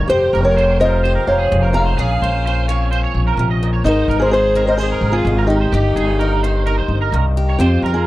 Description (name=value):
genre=highlife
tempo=128 BPM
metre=4/4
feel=straight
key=unclear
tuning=A4 = 440 Hz
part: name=picked acoustic archtop guitar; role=accompaniment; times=0.0-8.1 s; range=F2 to G4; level=-26 LUFS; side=left 6 dB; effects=none
part: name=electric guitar at the edge of break-up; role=arpeggios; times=0.0-8.1 s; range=G4 to Eb5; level=-24 LUFS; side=right 8 dB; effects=ensemble chorus, tape echo
part: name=upright bass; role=bass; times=0.0-8.1 s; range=F1 to F2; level=-17 LUFS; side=equal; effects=none
part: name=fingerpicked acoustic archtop guitar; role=melody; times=0.1-8.1 s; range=C4 to Bb5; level=-17 LUFS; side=equal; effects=none
part: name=bright alto saxophone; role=second line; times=0.1-7.1 s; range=Eb4 to F5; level=-25 LUFS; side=left 4 dB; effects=none
room=small room ambience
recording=dry, close 1970s-style studio recording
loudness=-14 LUFS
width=side -16 dB against mid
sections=0.0-7.6 A section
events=none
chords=0.1 Fsus2; 2.0 Bbmadd9; 3.9 Ab; 5.7 Eb/G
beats=| 0.09 0.56 1.03 1.50 | 1.97 2.44 2.91 3.38 | 3.85 4.32 4.79 5.26 | 5.73 6.20 6.67 7.14 | 7.61